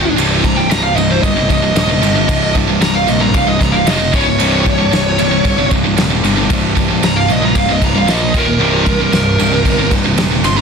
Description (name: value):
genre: heavy metal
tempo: 114 BPM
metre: 4/4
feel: straight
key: C minor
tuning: A4 = 442 Hz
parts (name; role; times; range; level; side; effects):
- high-gain lead guitar; melody; 0.0-10.6 s; G4 to C6; -17 LUFS; equal; distortion, ping-pong delay
- heavy high-gain guitar; riff; 0.0-10.6 s; C2 to Bb3; -19 LUFS; left 12 dB; distortion
- heavy high-gain guitar; riff; 0.0-10.6 s; C2 to Bb3; -18 LUFS; right 12 dB; distortion
- fuzz picked electric bass; bass; 0.0-10.6 s; C1 to Bb1; -18 LUFS; equal; overdrive
- tight distorted guitar; riff; 0.2-10.6 s; C2 to C3; -20 LUFS; right 1 dB; distortion
- soft brush drum kit; drums; 0.2-10.6 s; crash cymbal, kick drum, ride cymbal, snare drum; -18 LUFS; equal; none
room: light reverb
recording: dense, heavily limited modern master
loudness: -11 LUFS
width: side -6 dB against mid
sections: 0.0-10.6 A section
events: lead electric guitar solo 0.0-10.6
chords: 0.2 Cm; 3.9 F5; 4.1 Db5; 4.4 C5; 8.1 Bb5; 8.3 Eb5; 8.6 Cm